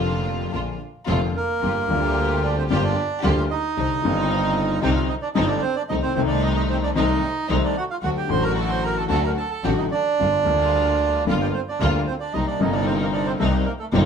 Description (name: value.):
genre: tango.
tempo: 112 BPM.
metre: 4/4.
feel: rubato.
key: G minor.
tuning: A4 = 441 Hz.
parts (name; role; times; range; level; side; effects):
dark concert grand piano; accompaniment; 0.0-14.1 s; F1 to F#4; -24 LUFS; left 4 dB; none.
dark studio string section; stabs; 0.0-14.1 s; G3 to G4; -28 LUFS; left 1 dB; none.
clear double bass; bass; 0.0-14.1 s; F1 to D2; -25 LUFS; right 1 dB; none.
bandoneon; melody; 1.1-14.0 s; G3 to C6; -24 LUFS; right 5 dB; none.
room: wet studio reverb, RT60 0.8 s.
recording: band playing live in one room.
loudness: -19 LUFS.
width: side -7 dB against mid.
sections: 0.0-1.6 A section; 1.6-14.1 B section.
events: none.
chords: 0.0 Bb; 1.6 Gm7; 3.8 Cmadd9; 5.9 Adim/C; 8.0 D; 10.2 Gm7; 12.3 Cm7.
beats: 0.53 1.08 | 1.62 2.16 2.70 3.23 | 3.77 4.30 4.83 5.36 | 5.89 6.43 6.96 7.50 | 8.03 8.56 9.10 9.65 | 10.19 10.73 11.27 11.81 | 12.34 12.87 13.40 13.93.